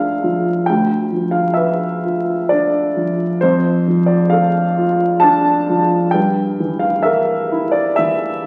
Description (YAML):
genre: classical, romantic nocturne for solo piano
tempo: 66 BPM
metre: 3/4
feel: rubato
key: D minor from 3.4 s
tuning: A4 = 439 Hz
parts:
  - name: warm upright piano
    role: solo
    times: 0.0-8.5 s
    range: D2 to A5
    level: -16 LUFS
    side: equal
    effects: none
room: wet recital hall reverb, RT60 1.4 s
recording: very old 78 rpm record, vinyl crackle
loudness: -16 LUFS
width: mono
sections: 0.0-8.5 A section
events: none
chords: 0.0 Bb/D; 0.7 Dm69; 3.4 Dm/F; 6.1 Edim/G